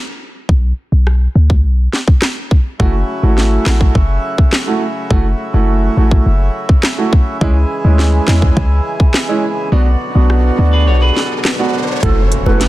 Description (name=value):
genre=dancehall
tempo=104 BPM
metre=4/4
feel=straight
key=unclear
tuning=A4 = 443 Hz
part: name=warm 808-style bass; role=bass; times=0.5-12.7 s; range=F#1 to E2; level=-12 LUFS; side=equal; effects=none
part: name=island pop drum kit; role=drums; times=0.5-12.7 s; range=handclaps, hi-hat, kick drum, rim click, snare drum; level=-13 LUFS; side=equal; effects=none
part: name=warm grand piano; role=accompaniment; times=2.8-12.6 s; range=G#3 to F#4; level=-18 LUFS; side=right 4 dB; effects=none
part: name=hand-pumped harmonium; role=sustained chords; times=2.8-12.7 s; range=B2 to G#4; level=-21 LUFS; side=equal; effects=sidechain pumping
part: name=riser and impact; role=sound effects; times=9.3-12.7 s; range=none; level=-24 LUFS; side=equal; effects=none
part: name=clean electric guitar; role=arpeggios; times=10.7-11.8 s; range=G#4 to C#5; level=-20 LUFS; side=right 1 dB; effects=none
part: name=steel pan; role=melody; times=12.0-12.6 s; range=A4 to B4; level=-19 LUFS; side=right 6 dB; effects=tape echo
part: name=bongos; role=percussion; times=12.5-12.6 s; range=none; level=-26 LUFS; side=left 6 dB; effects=none
room=studio reverb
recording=dense, heavily limited modern master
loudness=-11 LUFS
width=side -17 dB against mid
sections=0.0-12.0 A section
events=riser 9.3-12.0; kick muted 9.7-12.0; impact 12.0-12.7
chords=0.5 Bm; 2.8 F#m7; 7.4 C#m; 9.7 Bm; 12.0 F#m7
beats=| 0.49 1.07 1.64 2.22 | 2.80 3.38 3.95 4.53 | 5.11 5.68 6.26 6.84 | 7.41 7.99 8.57 9.14 | 9.72 10.30 10.88 11.45 | 12.03 12.61